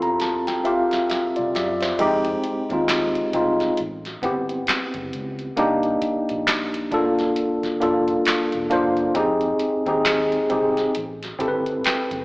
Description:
R&B, neo-soul; 67 BPM; 4/4; swing 59% on 16ths; A4 = 442 Hz
tine electric piano; accompaniment; 0.0-12.2 s; Ab3 to C6; -20 LUFS; equal; overdrive, fast stereo tremolo, slapback echo
vintage muted fingered electric bass; bass; 0.0-12.2 s; E1 to F#2; -37 LUFS; equal
booming analog drum machine; drums; 0.0-12.2 s; crash cymbal, handclaps, hi-hat, kick drum, snare drum; -25 LUFS; equal
light reverb, digital ambience; live gig heard through the venue's PA, club reverb, AM radio sound; -19 LUFS; side -24 dB against mid
0.0-2.0 A section; 2.0-12.2 B section
tine electric piano fill 0.0-2.0; drum fill 0.2-2.0
0.0 Dm11; 2.0 Fm9; 3.8 Am9; 5.6 Cm9; 6.9 Gm9; 9.2 Fm9; 10.9 Am9

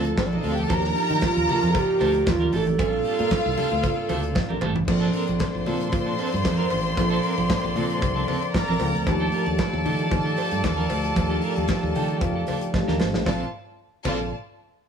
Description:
disco; 114 BPM; 4/4; straight; Bb major; A4 = 437 Hz
mellow hollow alto flute; melody; 0.0-4.4 s; D4 to A4; -25 LUFS; right 5 dB
rich studio violin section; second line; 0.0-14.3 s; C4 to C6; -29 LUFS; left 1 dB
clean electric guitar; accompaniment; 0.0-14.2 s; C4 to Bb4; -33 LUFS; right 8 dB; tremolo
mellow tine electric piano; accompaniment; 0.0-14.3 s; D3 to G5; -30 LUFS; left 1 dB; medium stereo tremolo
muted French horn section; sustained chords; 0.0-13.5 s; Bb2 to D5; -32 LUFS; left 4 dB
fingered electric bass; bass; 0.0-14.3 s; Ab1 to Eb3; -26 LUFS; right 1 dB
modern studio drum kit; drums; 0.0-14.2 s; crash cymbal, handclaps, hi-hat, kick drum, snare drum, toms; -28 LUFS; equal
congas; percussion; 0.2-14.3 s; -33 LUFS; left 4 dB
cowbell; percussion; 0.2-14.3 s; -37 LUFS; right 8 dB
light reverb, studio ambience; -21 LUFS; side -7 dB against mid
0.0-4.9 A section; 4.9-13.3 B section; 13.3-14.9 C section
drum fill 4.4-4.9, 12.7-13.3; tine electric piano fill 11.7-13.3
0.0 Bbmaj9; 0.7 Ebmaj9#11; 2.8 Bbmaj13; 4.9 Bbmaj9; 9.1 Ebmaj9#11; 13.3 Bbmaj9

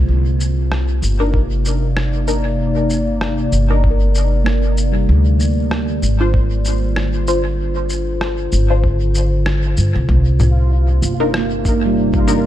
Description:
ambient dub; 96 BPM; 4/4; swing 55% on 16ths; C minor; A4 = 437 Hz
warbly tape-like pad; sustained chords; 0.0-12.5 s; C3 to D5; -21 LUFS; equal; chorus, built-in reverb
handpan; arpeggios; 0.0-12.5 s; G3 to Bb4; -25 LUFS; right 3 dB; tape echo
upright bass; bass; 0.0-12.5 s; G1 to G2; -16 LUFS; equal
electronic shaker, rim click and congas; drums; 0.4-12.4 s; -24 LUFS; left 1 dB; overdrive, studio reverb, dub echo
filtered dub chord stab; stabs; 1.2-12.4 s; D4 to C5; -24 LUFS; left 2 dB; phaser, wide subtle chorus, cassette tape, dub echo
electronic kick drum; drums; 1.3-12.2 s; -18 LUFS; equal; overdrive, studio reverb
bubbling stepped-filter texture; texture; 10.1-12.5 s; F4 to F5; -28 LUFS; right 1 dB; chorus, built-in reverb
digital ambience; dark, warm production; -14 LUFS; side -12 dB against mid
0.0-10.1 A section; 10.1-12.5 B section
band accent 9.5-9.8
0.1 Cm9; 5.1 Dm7b5; 10.1 Cm9

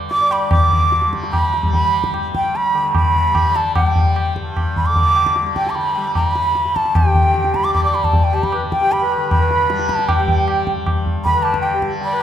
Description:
indian classical, Hindustani; 151 BPM; 4/4; straight; G raga hamsadhwani; A4 = 438 Hz
tanpura; drone; 0.0-12.2 s; G2 to G3; -26 LUFS; left 1 dB
breathy bright bansuri; melody; 0.1-12.2 s; G5 to D6; -17 LUFS; right 1 dB
tabla; percussion; 0.1-12.2 s; -19 LUFS; left 1 dB
hand-pumped harmonium; second line; 0.2-0.6, 7.0-12.2 s; G4 to D5; -23 LUFS; equal
wet concert hall reverb, RT60 1.9 s; recorded in a church or concert hall; -14 LUFS; side -10 dB against mid
0.5-12.2 A section
speeding up 0.0-12.2

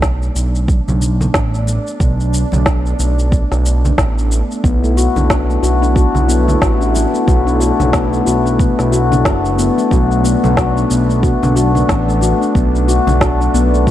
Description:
organic downtempo; 91 BPM; 4/4; swing 59% on 16ths; B minor; A4 = 438 Hz
warm analog pad; sustained chords; 0.0-13.9 s; A3 to E4; -21 LUFS; right 1 dB; wide subtle chorus, sidechain pumping
smooth synth bass; bass; 0.0-13.9 s; F#1 to B1; -15 LUFS; right 1 dB; tube saturation
electronic kick drum; drums; 0.0-13.9 s; -16 LUFS; right 1 dB
electronic snare drum and shaker; drums; 0.0-13.9 s; -22 LUFS; equal; overdrive
congas; percussion; 0.9-13.7 s; -24 LUFS; equal
handpan; arpeggios; 4.6-13.9 s; A3 to F#4; -16 LUFS; left 5 dB; tape echo
light reverb; dark, warm production; -12 LUFS; side -12 dB against mid
0.0-13.9 A section
0.0 Bm7

